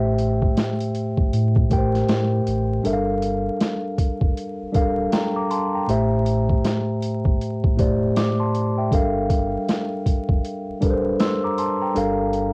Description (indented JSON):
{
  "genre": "lo-fi hip hop",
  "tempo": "79 BPM",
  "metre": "4/4",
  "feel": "swing 62% on 16ths",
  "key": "G dorian",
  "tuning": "A4 = 439 Hz",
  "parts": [
    { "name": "mellow tine electric piano", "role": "accompaniment", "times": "0.0-12.5 s", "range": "A2 to E6", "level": "-21 LUFS", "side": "equal", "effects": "cassette tape, low-pass filter" },
    { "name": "sub bass with octave", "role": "bass", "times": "0.0-12.5 s", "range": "D1 to A2", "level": "-26 LUFS", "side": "equal", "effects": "none" },
    { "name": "boom bap sampler-style drum kit", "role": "drums", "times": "0.2-12.5 s", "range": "hi-hat, kick drum, snare drum", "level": "-20 LUFS", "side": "equal", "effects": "overdrive, vintage 12-bit sampler grit, cassette tape" }
  ],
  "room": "light reverb",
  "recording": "home recording on cassette, vinyl crackle",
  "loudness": "-19 LUFS",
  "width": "side -31 dB against mid",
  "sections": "0.0-12.5 A section",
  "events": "kick muted 2.8-3.6, 12.0-12.5",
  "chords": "0.0 Am7; 2.8 Gm9; 5.9 Am7; 8.9 Gm9"
}